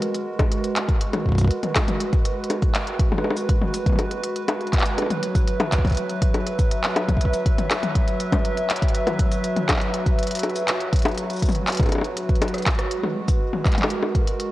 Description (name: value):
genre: IDM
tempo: 121 BPM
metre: 4/4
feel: straight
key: G# minor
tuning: A4 = 439 Hz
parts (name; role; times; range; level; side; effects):
- hollow soft pad; sustained chords; 0.0-14.5 s; F#3 to E5; -26 LUFS; right 1 dB; chorus, vintage 12-bit sampler grit, sidechain pumping
- organic electronic drum kit; drums; 0.0-14.5 s; bongos, handclaps, hi-hat, rim click, shaker, toms; -25 LUFS; left 2 dB; none
- electronic kick drum; drums; 0.4-14.2 s; none; -21 LUFS; equal; none
room: little or no reverb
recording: worn, warbling old tape, cassette tape, warbly pitch drift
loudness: -20 LUFS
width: side -16 dB against mid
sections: 0.0-12.9 A section; 12.9-14.5 A section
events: drum fill 12.5-12.9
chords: 0.0 G#m9; 5.0 F#7sus4; 12.9 G#m9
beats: 0.02 0.52 | 1.01 1.51 2.00 2.50 | 2.99 3.49 3.99 4.48 | 4.98 5.47 5.97 6.46 | 6.96 7.46 7.95 8.45 | 8.95 9.44 9.94 10.43 | 10.93 11.42 11.92 12.42 | 12.91 13.41 13.90 14.40